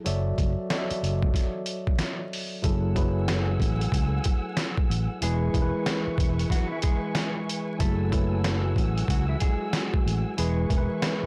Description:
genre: hip hop, boom-bap hip-hop.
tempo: 93 BPM.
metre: 4/4.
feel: swing 62% on 16ths.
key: F# minor.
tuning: A4 = 440 Hz.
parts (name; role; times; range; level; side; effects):
tine electric piano; accompaniment; 0.0-11.3 s; E3 to E5; -34 LUFS; equal; cassette tape, high-pass filter, low-pass filter.
fingered electric bass; bass; 0.1-11.3 s; E1 to C#2; -29 LUFS; equal; transformer saturation.
trip hop sampler-style drum kit; drums; 0.1-11.2 s; hi-hat, kick drum, snare drum; -29 LUFS; equal; none.
warm studio string section; sustained chords; 2.6-11.3 s; A3 to E6; -40 LUFS; equal; high-pass filter, low-pass filter.
mellow electric guitar; melody; 5.2-11.2 s; E3 to A4; -36 LUFS; equal; spring reverb, high-pass filter, low-pass filter, delay.
room: digital ambience.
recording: blown-out, overdriven recording, vinyl crackle, overdrive.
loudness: -26 LUFS.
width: mono.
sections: 0.0-2.6 A section; 2.6-11.3 B section.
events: none.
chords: 0.1 Dmaj9/F#; 2.6 F#m9; 5.2 C#m7/E; 7.8 F#m9; 10.4 C#m7/E.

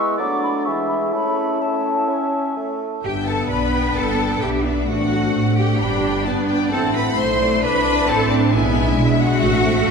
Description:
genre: quick classical-period movement for symphony orchestra.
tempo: 131 BPM.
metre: 4/4.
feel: straight.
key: A major, G major from 3.0 s.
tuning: A4 = 439 Hz.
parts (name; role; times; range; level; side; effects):
mellow clarinet; second line; 0.0-2.8 s; G#4 to C#5; -30 LUFS; equal; none.
mellow hollow silver concert flute; second line; 0.0-2.6 s; A5 to D6; -24 LUFS; left 3 dB; none.
warm oboe; second line; 0.0-2.8 s; D5 to E5; -31 LUFS; right 3 dB; none.
clear bassoon; accompaniment; 0.0-3.0 s; E3 to C#4; -25 LUFS; right 3 dB; none.
warm French horn section; sustained chords; 0.0-9.8 s; G#3 to E4; -24 LUFS; left 3 dB; none.
rich studio violin section; melody; 3.0-9.9 s; D5 to B5; -29 LUFS; left 5 dB; none.
warm studio violin section; second line; 3.0-9.9 s; D5 to C6; -25 LUFS; left 3 dB; none.
rich studio viola section; accompaniment; 3.0-9.9 s; G#3 to D4; -23 LUFS; left 1 dB; none.
rich studio cello section; bass; 3.0-9.9 s; D4 to C5; -22 LUFS; right 1 dB; none.
rich studio double bass section; bass; 3.0-9.9 s; G1 to B2; -22 LUFS; right 3 dB; none.
room: wet concert hall reverb, RT60 2.2 s.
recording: recorded in a church or concert hall.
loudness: -17 LUFS.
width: side -5 dB against mid.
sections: 0.0-3.0 A section; 3.0-9.9 B section.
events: none.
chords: 0.2 D/F#; 0.7 E; 1.1 A; 3.0 G; 4.9 D7/A; 5.8 G; 6.7 Am; 8.5 E7/B.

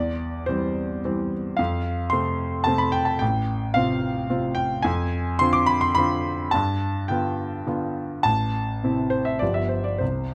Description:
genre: classical, romantic character piece for solo piano.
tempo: 96-112 BPM.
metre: 3/4.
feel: rubato.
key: unclear.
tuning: A4 = 440 Hz.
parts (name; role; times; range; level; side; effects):
clear concert grand piano; solo; 0.0-10.3 s; G1 to D6; -24 LUFS; equal; none.
room: light reverb.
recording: close, detailed microphones.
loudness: -24 LUFS.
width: mono.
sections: 0.0-10.3 A section.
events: none.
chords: 0.0 C/E; 1.6 F; 3.2 F/A; 4.9 Dm7b5/F; 6.5 G7; 8.2 Am; 9.4 G7.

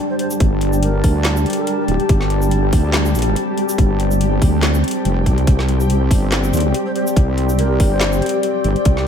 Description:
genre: deep dubstep.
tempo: 142 BPM.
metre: 4/4.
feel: swing 55% on 16ths, half-time.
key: unclear.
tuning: A4 = 440 Hz.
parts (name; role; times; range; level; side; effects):
deep dark ambient pad; sustained chords; 0.0-9.1 s; G3 to A5; -21 LUFS; left 1 dB; chorus, built-in reverb.
flickering grainy texture; texture; 0.0-9.1 s; G3 to G4; -24 LUFS; left 1 dB; built-in reverb, lush chorus.
breathy bright low ney; melody; 0.1-2.5, 6.9-8.3 s; G4 to C5; -29 LUFS; left 1 dB; dub echo.
garage drum kit; drums; 0.2-9.0 s; handclaps, hi-hat, shaker, snare drum; -24 LUFS; equal; none.
wobble bass; bass; 0.4-9.1 s; D1 to Eb2; -17 LUFS; equal; chorus.
electronic kick drum; drums; 0.4-8.9 s; none; -14 LUFS; equal; none.
room: light reverb.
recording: none.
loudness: -14 LUFS.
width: side -8 dB against mid.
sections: 0.0-9.1 A section.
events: none.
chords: 0.0 G5; 5.5 Csus2.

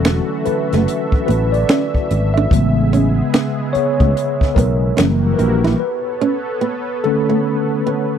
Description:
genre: R&B, neo-soul.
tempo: 73 BPM.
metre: 4/4.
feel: swing 64% on 16ths.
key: A major.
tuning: A4 = 440 Hz.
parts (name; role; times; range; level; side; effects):
mellow tine electric piano; accompaniment; 0.0-8.2 s; C#3 to E5; -18 LUFS; left 1 dB; medium stereo tremolo.
warm analog pad; sustained chords; 0.0-8.2 s; D3 to E5; -25 LUFS; equal; chorus.
sustaining fretless electric bass; bass; 0.0-5.7 s; E1 to C#2; -17 LUFS; equal; none.
compact cocktail drum kit; drums; 0.0-5.7 s; finger snaps, hi-hat, kick drum, snare drum; -17 LUFS; equal; none.
nylon-string guitar; second line; 0.1-8.0 s; A3 to E4; -20 LUFS; right 7 dB; none.
room: small room reverb.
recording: dry, close 1970s-style studio recording.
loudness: -14 LUFS.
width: side -8 dB against mid.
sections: 0.0-8.2 A section.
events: tine electric piano solo 0.0-8.2; break 5.8-8.2.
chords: 0.0 E13sus4; 2.5 Amaj9; 5.0 F#7b9; 5.8 Bm9.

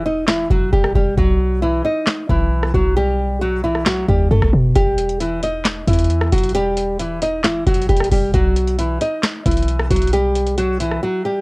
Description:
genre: hip hop, trap.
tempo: 134 BPM.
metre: 4/4.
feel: half-time.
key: E harmonic minor.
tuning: A4 = 444 Hz.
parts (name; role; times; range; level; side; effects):
nylon-string guitar; melody; 0.0-11.4 s; E3 to D#5; -18 LUFS; equal; none.
warm 808-style bass; bass; 0.0-11.0 s; E1 to B2; -19 LUFS; equal; none.
booming analog drum machine; drums; 0.3-11.0 s; handclaps, hi-hat, kick drum, rim click, snare drum; -19 LUFS; equal; cassette tape.
room: light reverb.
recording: home recording on cassette.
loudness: -15 LUFS.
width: side -26 dB against mid.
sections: 0.0-11.4 A section.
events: break 0.0-4.8.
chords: 0.0 Emadd9; 1.2 B; 4.8 Emadd9; 8.3 B.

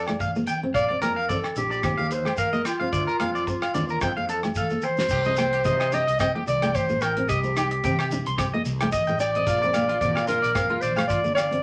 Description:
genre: highlife guitar band.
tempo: 110 BPM.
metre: 4/4.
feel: swing 54% on 16ths.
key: unclear.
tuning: A4 = 441 Hz.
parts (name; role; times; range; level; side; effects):
warm clarinet; melody; 0.0-11.6 s; F4 to Eb5; -27 LUFS; equal; none.
electric guitar at the edge of break-up; arpeggios; 0.0-11.5 s; F4 to C6; -31 LUFS; equal; none.
fretless electric bass; bass; 0.0-11.6 s; G1 to C3; -33 LUFS; equal; none.
fingerpicked steel-string acoustic guitar; accompaniment; 0.1-11.6 s; A3 to Eb4; -33 LUFS; equal; none.
damped 70s drum kit; drums; 0.1-11.6 s; crash cymbal, hi-hat, kick drum, rim click, snare drum; -36 LUFS; equal; none.
agogo bells; percussion; 0.1-11.5 s; none; -39 LUFS; equal; none.
congas; percussion; 0.2-11.4 s; none; -38 LUFS; equal; none.
shekere; percussion; 0.2-11.5 s; none; -38 LUFS; equal; none.
room: wet studio ambience, RT60 0.5 s.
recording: none.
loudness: -24 LUFS.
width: mono.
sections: 0.0-5.1 A section; 5.1-11.6 B section.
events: drum fill 4.8.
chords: 0.0 Fadd9; 0.7 Bb; 1.8 Ebadd9; 2.9 Bb/D; 4.0 F; 5.1 Cm; 9.5 Bb.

